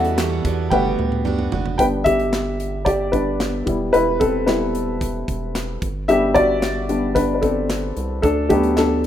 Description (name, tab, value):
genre	piano-driven pop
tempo	112 BPM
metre	4/4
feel	straight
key	G major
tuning	A4 = 440 Hz
part	warm upright piano	accompaniment	0.0-9.1 s	F#3 to G5	-18 LUFS	left 1 dB	none
part	picked steel-string acoustic guitar	riff	0.0-1.8 s	E3 to F#4	-25 LUFS	right 8 dB	none
part	round analog bass	bass	0.0-9.1 s	E1 to E2	-26 LUFS	right 1 dB	none
part	modern studio drum kit	drums	0.0-9.1 s	handclaps, hi-hat, kick drum, snare drum, toms	-26 LUFS	equal	none
room	light reverb, small room ambience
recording	rough home demo mix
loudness	-17 LUFS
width	side -10 dB against mid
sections	0.0-1.8 A section; 1.8-9.1 B section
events	upright piano solo 0.0-1.8, 1.8-9.1; drum fill 0.7-1.8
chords	0.0 Emadd9; 0.7 Gmaj7; 1.8 G; 3.7 Em; 5.8 G; 8.2 D